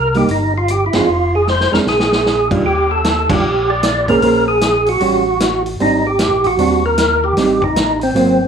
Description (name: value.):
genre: soul jazz organ trio.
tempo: 153 BPM.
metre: 4/4.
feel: swing 64% on 8ths.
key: unclear.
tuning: A4 = 439 Hz.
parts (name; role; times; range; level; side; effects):
percussive tonewheel organ; melody; 0.0-8.5 s; C4 to D5; -14 LUFS; right 1 dB; overdrive, chorus vibrato, slow rotary speaker, plate reverb.
mellow tonewheel organ; bass; 0.0-8.5 s; F1 to Eb2; -22 LUFS; equal; chorus vibrato, slow rotary speaker.
hollow-body jazz guitar; accompaniment; 0.1-8.4 s; Eb3 to C5; -16 LUFS; right 4 dB; none.
vintage drum kit; drums; 0.1-8.3 s; crash cymbal, hi-hat, kick drum, ride cymbal, snare drum; -20 LUFS; equal; none.
room: moderate studio ambience, RT60 0.4 s.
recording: small room ambience.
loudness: -12 LUFS.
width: side -7 dB against mid.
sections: 0.0-2.7 A section; 2.7-8.5 B section.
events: band accent 0.9, 3.2; drum fill 1.5-2.3.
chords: 0.0 Cm7; 1.1 Fm; 1.9 Bb7; 2.7 Ebmaj7; 4.2 Bbm9; 5.0 A6; 5.8 Abmaj9#11; 7.4 Am7b5.